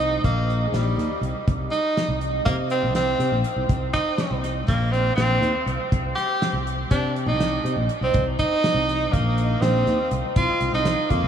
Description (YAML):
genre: progressive instrumental, band music in an uneven meter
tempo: 243 BPM (eighths)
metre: 9/8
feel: straight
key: C minor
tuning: A4 = 437 Hz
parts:
  - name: bright tenor saxophone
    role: melody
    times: 0.0-11.3 s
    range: G3 to G4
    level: -23 LUFS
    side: right 2 dB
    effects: diffuse ambient delay
  - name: fretless electric bass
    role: bass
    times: 0.0-11.3 s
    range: Bb1 to C3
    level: -24 LUFS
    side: left 1 dB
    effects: none
  - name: damped 70s drum kit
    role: drums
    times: 0.0-11.2 s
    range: hi-hat, kick drum, snare drum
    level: -27 LUFS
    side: equal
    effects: none
room: moderate huge ambient reverb, RT60 8.9 s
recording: dreamy mix soaked in reverb, small room ambience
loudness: -20 LUFS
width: side -8 dB against mid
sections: 0.0-10.4 A section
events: none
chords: 0.0 Cm7; 10.4 Cm